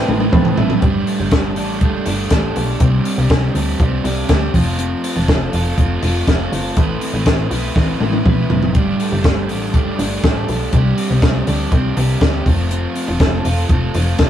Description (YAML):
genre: jangly indie pop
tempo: 121 BPM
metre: 4/4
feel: straight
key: unclear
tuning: A4 = 440 Hz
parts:
  - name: crunchy overdriven guitar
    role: accompaniment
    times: 0.0-14.3 s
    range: A2 to B4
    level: -24 LUFS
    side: right 3 dB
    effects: none
  - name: soft electric-piano-like synth keys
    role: accompaniment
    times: 0.0-0.8 s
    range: C4 to A5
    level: -23 LUFS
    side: right 2 dB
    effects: chorus
  - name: twelve-string electric guitar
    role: arpeggios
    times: 0.0-14.3 s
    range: G3 to B4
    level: -24 LUFS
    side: left 1 dB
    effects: none
  - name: plucky analog bass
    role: bass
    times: 0.0-14.3 s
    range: F1 to D2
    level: -19 LUFS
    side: equal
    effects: none
  - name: compact cocktail drum kit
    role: drums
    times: 0.1-14.3 s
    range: hi-hat, kick drum, snare drum, toms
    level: -17 LUFS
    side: equal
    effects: none
room: light reverb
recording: rough rehearsal-room recording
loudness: -14 LUFS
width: side -10 dB against mid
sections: 0.8-14.3 A section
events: synth keys fill 0.0-0.8; drum fill 0.0-0.8, 7.8-8.8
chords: 0.0 Amadd9; 0.8 Gsus2; 2.8 Csus2; 4.5 F; 6.8 Amadd9; 8.8 Gsus2; 10.7 Csus2; 12.5 F